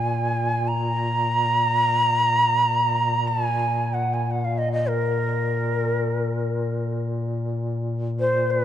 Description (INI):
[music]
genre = caucasian folk, Caucasian lament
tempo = free time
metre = none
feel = none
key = unclear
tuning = A4 = 440 Hz
[part]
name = breathy mellow shakuhachi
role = melody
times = 0.0-8.6 s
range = Bb4 to Bb5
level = -22 LUFS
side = right 1 dB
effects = none
[part]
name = warm duduk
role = drone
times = 0.0-8.6 s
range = Bb2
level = -25 LUFS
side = left 1 dB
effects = none
[sound]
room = wet church reverb, RT60 3.3 s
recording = nothing above 11.0 kHz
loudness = -20 LUFS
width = side -10 dB against mid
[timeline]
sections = 0.0-8.6 A section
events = none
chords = none